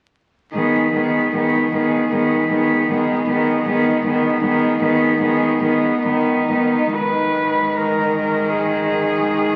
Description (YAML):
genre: classical, lyrical piece for cello ensemble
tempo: 61-79 BPM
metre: 4/4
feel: rubato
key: G# minor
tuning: A4 = 440 Hz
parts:
  - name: rich cello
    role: melody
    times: 0.5-9.6 s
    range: D#4 to B4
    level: -26 LUFS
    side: equal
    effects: none
  - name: warm cello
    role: accompaniment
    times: 0.5-9.6 s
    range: D#3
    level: -22 LUFS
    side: equal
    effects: none
  - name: warm cello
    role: bass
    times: 0.5-9.6 s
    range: G#2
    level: -33 LUFS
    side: equal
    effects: none
  - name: rich cello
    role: second line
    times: 0.6-9.6 s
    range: G#3 to B3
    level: -22 LUFS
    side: equal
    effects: none
room: wet recital hall reverb, RT60 1.5 s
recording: very old 78 rpm record, vinyl crackle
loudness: -18 LUFS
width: mono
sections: 0.5-7.0 A section; 7.0-9.6 B section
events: none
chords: 0.5 G#m